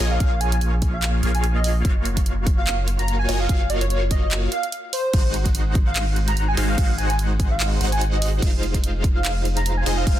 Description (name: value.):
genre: future bass.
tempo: 146 BPM.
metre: 4/4.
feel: swing 56% on 16ths, half-time.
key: unclear.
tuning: A4 = 439 Hz.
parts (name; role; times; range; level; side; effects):
airy dreamy lead; melody; 0.0-10.2 s; C5 to Bb5; -27 LUFS; equal; chorus, sidechain pumping, ping-pong delay.
supersaw stab; riff; 0.0-10.2 s; Ab3 to Gb5; -27 LUFS; equal; phaser, sidechain pumping.
saturated sub bass; bass; 0.0-10.2 s; F1 to Bb1; -22 LUFS; equal; sidechain pumping.
pop drum kit; drums; 0.0-10.2 s; crash cymbal, handclaps, hi-hat; -28 LUFS; right 2 dB; none.
electronic kick drum; drums; 0.2-10.2 s; none; -21 LUFS; equal; none.
room: little or no reverb.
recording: dense, heavily limited modern master.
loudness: -19 LUFS.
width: side -12 dB against mid.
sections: 0.0-10.2 A section.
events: none.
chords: 0.0 Bbm7; 1.8 Gbmaj7; 4.9 Ab7; 8.4 Fm7.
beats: | 0.20 0.61 1.03 1.44 | 1.85 2.26 2.67 3.08 | 3.49 3.90 4.31 4.72 | 5.13 5.55 5.96 6.37 | 6.78 7.19 7.60 8.01 | 8.42 8.83 9.24 9.66 | 10.07.